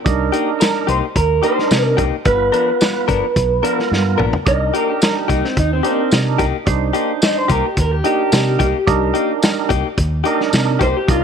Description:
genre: straight-eighth soul blues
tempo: 109 BPM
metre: 4/4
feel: straight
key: unclear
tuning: A4 = 436 Hz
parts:
  - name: percussive tonewheel organ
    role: accompaniment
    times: 0.0-11.2 s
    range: B3 to C5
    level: -21 LUFS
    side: right 12 dB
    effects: slow rotary speaker
  - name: deep dub fingered electric bass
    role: bass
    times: 0.1-11.2 s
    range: G1 to C3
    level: -20 LUFS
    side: equal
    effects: none
  - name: warm soul drum kit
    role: drums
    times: 0.1-11.2 s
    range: hi-hat, kick drum, snare drum, tambourine, toms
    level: -18 LUFS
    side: equal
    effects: none
  - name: direct-recorded clean electric guitar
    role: stabs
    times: 0.3-11.0 s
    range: F3 to A#4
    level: -23 LUFS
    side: left 12 dB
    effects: none
  - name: electric guitar through a small old amp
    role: melody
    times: 0.6-11.2 s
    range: C4 to Eb5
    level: -19 LUFS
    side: equal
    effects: phaser
room: light reverb, small room ambience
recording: 1960s-style stereo with parts hard left and right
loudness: -14 LUFS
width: side -7 dB against mid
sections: 0.0-4.5 A section; 4.5-11.2 B section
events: drum fill 3.9-4.5; clean electric guitar solo 4.5-11.2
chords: 0.1 Cm7; 2.3 G7#9; 4.5 Cm7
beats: | 0.05 0.60 1.16 1.71 | 2.26 2.81 3.36 3.91 | 4.46 5.01 5.57 6.12 | 6.67 7.22 7.77 8.32 | 8.87 9.43 9.98 10.53 | 11.08

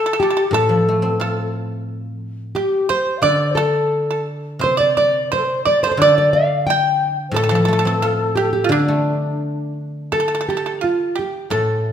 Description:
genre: chinese traditional, Chinese chamber ensemble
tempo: 88 BPM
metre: 2/4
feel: rubato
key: D yu mode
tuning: A4 = 440 Hz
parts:
  - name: nylon-string guitar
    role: melody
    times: 0.0-11.9 s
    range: D4 to G5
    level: -20 LUFS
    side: right 1 dB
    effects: none
  - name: mellow xiao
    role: second line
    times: 0.0-9.8 s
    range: D4 to G5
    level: -22 LUFS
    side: left 4 dB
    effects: none
  - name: pipa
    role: second line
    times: 0.0-11.9 s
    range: D4 to G5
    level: -22 LUFS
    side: right 6 dB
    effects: none
  - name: guzheng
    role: accompaniment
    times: 0.5-11.9 s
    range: A2 to F4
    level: -22 LUFS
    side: equal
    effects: none
room: wet recital hall reverb, RT60 1.6 s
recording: none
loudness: -16 LUFS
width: side -9 dB against mid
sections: 0.0-10.1 A section; 10.1-11.9 B section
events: none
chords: none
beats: | 0.53 1.20 | 1.88 2.55 | 3.23 3.91 | 4.61 5.31 | 5.99 6.67 | 7.35 8.03 | 8.71 9.41 | 10.12 10.82 | 11.50

